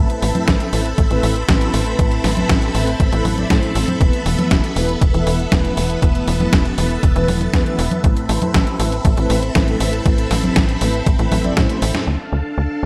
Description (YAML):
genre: italo disco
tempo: 119 BPM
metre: 4/4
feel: straight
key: A minor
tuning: A4 = 441 Hz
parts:
  - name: phased string machine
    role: sustained chords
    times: 0.0-12.9 s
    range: B3 to B5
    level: -27 LUFS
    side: equal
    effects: ensemble chorus, phaser
  - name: mellow synth brass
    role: stabs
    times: 0.0-12.0 s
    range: A2 to D5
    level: -25 LUFS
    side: equal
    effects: chorus, digital delay
  - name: tight sequencer bass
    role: bass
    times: 0.0-12.9 s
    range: E1 to A2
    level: -22 LUFS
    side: equal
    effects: none
  - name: clean 12-bit digital drum machine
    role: drums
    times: 0.1-12.0 s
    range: congas, hi-hat, snare drum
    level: -23 LUFS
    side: equal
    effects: overdrive, gated reverb
  - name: electronic kick drum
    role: drums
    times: 0.5-11.7 s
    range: none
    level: -19 LUFS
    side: equal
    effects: overdrive
room: light reverb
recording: none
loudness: -17 LUFS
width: mono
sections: 0.0-12.1 A section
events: drum fill 11.6-12.1; band accent 11.9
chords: 0.0 Amadd9; 4.0 Esus4; 8.0 Amadd9; 12.1 Dm